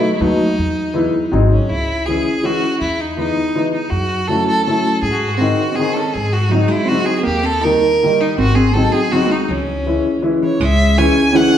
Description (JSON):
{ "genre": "musette waltz", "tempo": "162 BPM", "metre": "3/4", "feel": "straight", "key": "C# harmonic minor", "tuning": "A4 = 440 Hz", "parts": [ { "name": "rich violin", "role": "melody", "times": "0.0-11.6 s", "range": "C#4 to G#5", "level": "-18 LUFS", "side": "right 1 dB", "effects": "none" }, { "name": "hollow-body jazz guitar", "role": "second line", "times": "0.0-1.3, 5.4-11.6 s", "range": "E3 to D#4", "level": "-20 LUFS", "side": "right 2 dB", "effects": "none" }, { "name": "warm upright piano", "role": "accompaniment", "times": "0.0-11.5 s", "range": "D#3 to G#4", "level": "-18 LUFS", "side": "left 2 dB", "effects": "none" }, { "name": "upright bass", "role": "bass", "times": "0.2-11.1 s", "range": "G#1 to G#2", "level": "-20 LUFS", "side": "equal", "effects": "none" } ], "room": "wet recital hall reverb, RT60 1.3 s", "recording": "recorded in a church or concert hall", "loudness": "-14 LUFS", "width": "side -10 dB against mid", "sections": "0.0-1.7 A section; 1.7-10.6 B section", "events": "none", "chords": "0.0 B7; 0.6 E; 1.3 G#7; 1.7 C#m; 2.8 Emaj7; 3.9 F#m7; 5.0 G#; 6.2 G#7; 7.3 D#; 8.4 G#7; 9.5 C#m", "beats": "0.21 | 0.58 0.95 1.32 | 1.70 2.07 2.44 | 2.81 3.19 3.56 | 3.92 4.29 4.66 | 5.04 5.41 5.78 | 6.16 6.53 6.90 | 7.27 7.64 8.01 | 8.38 8.75 9.12 | 9.49 9.86 10.24 | 10.61 10.98 11.35" }